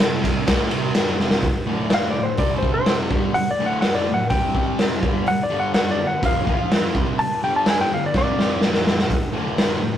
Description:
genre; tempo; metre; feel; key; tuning
garage rock duo or trio; 125 BPM; 4/4; straight; unclear; A4 = 440 Hz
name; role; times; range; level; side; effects
fuzz guitar; riff; 0.0-10.0 s; D2 to F4; -24 LUFS; right 1 dB; distortion
raw garage drum kit; drums; 0.0-9.7 s; hi-hat, kick drum, ride cymbal, snare drum; -20 LUFS; equal; none
clean lap steel guitar; melody; 1.9-8.6 s; C5 to A5; -22 LUFS; left 1 dB; none
room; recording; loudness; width
light reverb; rough rehearsal-room recording, tube saturation; -18 LUFS; side -10 dB against mid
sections
0.0-1.4 A section; 1.4-10.0 B section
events
drum fill 1.2, 8.1-9.1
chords
0.0 C5; 0.5 D5; 2.6 C5; 3.1 D5; 4.5 C5; 5.0 Dadd11/G; 5.5 G5; 6.5 F5; 6.9 G5; 8.6 Bb5; 9.3 D5

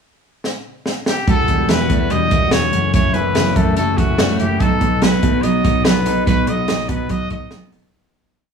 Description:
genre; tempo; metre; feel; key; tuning
jangly indie pop; 144 BPM; 4/4; straight; unclear; A4 = 440 Hz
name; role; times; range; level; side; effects
compact cocktail drum kit; drums; 0.4-7.8 s; hi-hat, kick drum, snare drum; -19 LUFS; right 1 dB; none
clear trumpet; melody; 1.1-7.7 s; F#4 to D#5; -20 LUFS; equal; none
picked steel-string acoustic guitar; accompaniment; 1.3-7.9 s; F#2 to F#4; -23 LUFS; right 5 dB; none
electric guitar through a small old amp; arpeggios; 1.3-8.5 s; F#2 to F#4; -21 LUFS; left 3 dB; none
picked electric bass; bass; 1.3-7.9 s; E1 to B2; -21 LUFS; equal; none
room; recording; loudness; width
moderate large studio reverb, RT60 1.1 s; band playing live in one room, small room ambience; -14 LUFS; side -6 dB against mid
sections
0.0-1.3 pickup bar; 1.3-7.9 verse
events
drum fill 0.4-1.3; fade-out 6.3-7.9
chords
0.0 N.C.; 1.3 Emadd9; 2.7 F#m7; 4.6 B

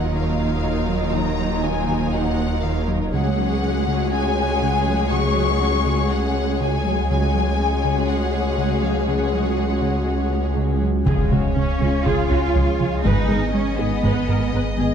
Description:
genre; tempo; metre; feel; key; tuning
cinematic, hybrid orchestral and electronic film score; 121 BPM; 4/4; straight; unclear; A4 = 439 Hz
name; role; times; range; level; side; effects
bright symphonic violin section; melody; 0.0-14.9 s; E#5 to C#6; -28 LUFS; left 6 dB; none
clear studio violin section; second line; 0.0-14.9 s; E#4 to D#5; -29 LUFS; left 4 dB; none
rich symphonic viola section; accompaniment; 0.0-14.9 s; F#3 to B4; -28 LUFS; right 1 dB; none
warm analog pad; sustained chords; 0.0-14.9 s; G#3 to F#5; -26 LUFS; equal; chorus
thumb-piano-like synth pluck; arpeggios; 0.0-14.9 s; C#3 to G#4; -28 LUFS; left 2 dB; chorus, ping-pong delay
rich symphonic cello section; bass; 0.0-14.8 s; C#2 to E#4; -25 LUFS; right 3 dB; none
warm sub bass; bass; 0.0-14.9 s; D#1 to C#2; -26 LUFS; equal; none
plucky analog bass; riff; 11.1-14.9 s; C#2 to G#3; -24 LUFS; right 2 dB; none
dark symphonic double bass section; bass; 11.1-14.9 s; G#1 to C#2; -28 LUFS; right 4 dB; none
solo taiko drums; drums; 11.1-14.5 s; none; -27 LUFS; equal; none
impact; sound effects; 11.1-13.1 s; none; -28 LUFS; equal; none
room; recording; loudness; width
wet scoring stage reverb, RT60 1.6 s; dark, warm production; -18 LUFS; side -7 dB against mid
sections
0.0-11.1 A section; 11.1-14.9 B section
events
impact 11.1-13.1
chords
0.0 D#madd9; 3.1 C#sus4; 11.1 C#; 13.1 G#m

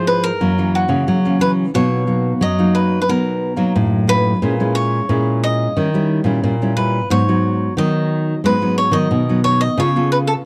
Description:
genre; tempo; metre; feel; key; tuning
samba; 90 BPM; 4/4; straight; unclear; A4 = 440 Hz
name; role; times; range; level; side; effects
cavaquinho; melody; 0.0-10.3 s; Gb4 to D#5; -23 LUFS; equal; none
nylon-string guitar; accompaniment; 0.0-10.4 s; Gb2 to A4; -22 LUFS; equal; none
nylon-string guitar; bass; 0.0-10.3 s; Ab2 to B3; -20 LUFS; equal; none
room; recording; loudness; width
small room reverb; dry, close 1970s-style studio recording; -17 LUFS; mono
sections
0.0-10.5 A section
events
none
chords
0.4 Gb7; 1.7 Bmaj7; 4.4 Bbm7b5; 5.8 Eb7b9; 7.1 Abm7; 9.8 Dbaug7

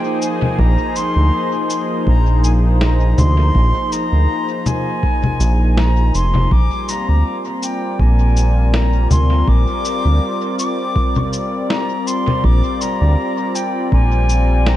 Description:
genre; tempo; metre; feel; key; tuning
ambient dub; 81 BPM; 4/4; swing 55% on 16ths; Bb mixolydian; A4 = 440 Hz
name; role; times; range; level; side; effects
silver concert flute; melody; 0.0-14.8 s; G5 to D6; -22 LUFS; left 1 dB; dub echo
warm analog pad; sustained chords; 0.0-14.8 s; F3 to D5; -22 LUFS; left 1 dB; wide subtle chorus
electronic cabasa, congas and snare drum; drums; 0.2-14.8 s; none; -22 LUFS; left 1 dB; dub echo
round analog bass; bass; 0.6-14.8 s; F1 to D2; -13 LUFS; equal; none
electronic kick drum; drums; 0.6-14.1 s; none; -19 LUFS; equal; overdrive
room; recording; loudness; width
light reverb, digital ambience; echo-heavy mix; -14 LUFS; side -13 dB against mid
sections
0.0-14.8 A section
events
none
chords
0.0 Fm/Bb; 6.5 Bb

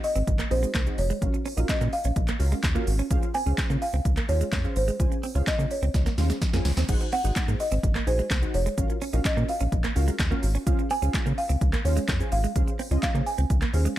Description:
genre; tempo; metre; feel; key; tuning
dance-pop; 127 BPM; 4/4; straight; Db major; A4 = 438 Hz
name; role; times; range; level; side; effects
folk marimba with soft mallets; melody; 0.0-13.9 s; C5 to Ab5; -31 LUFS; equal; digital delay
warm analog keys; accompaniment; 0.0-13.9 s; C4 to Ab5; -34 LUFS; equal; chorus, sidechain pumping
direct-recorded clean electric guitar; riff; 0.0-13.9 s; Ab3 to Eb4; -34 LUFS; right 6 dB; lush chorus
deep house drum kit; drums; 0.0-14.0 s; crash cymbal, handclaps, hi-hat, kick drum, shaker, snare drum; -27 LUFS; equal; none
round analog bass; bass; 0.2-13.9 s; F1 to Db3; -25 LUFS; equal; sidechain pumping
room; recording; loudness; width
little or no reverb; dark, warm production; -23 LUFS; side -14 dB against mid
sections
0.0-6.9 A section; 6.9-14.0 A section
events
drum fill 5.9-6.9; synth keys fill 13.7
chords
0.0 Ab7; 1.2 Gbmaj7/Bb; 3.1 Dbmaj7; 6.9 Ab7; 8.8 Gbmaj7/Bb; 10.7 Dbmaj7

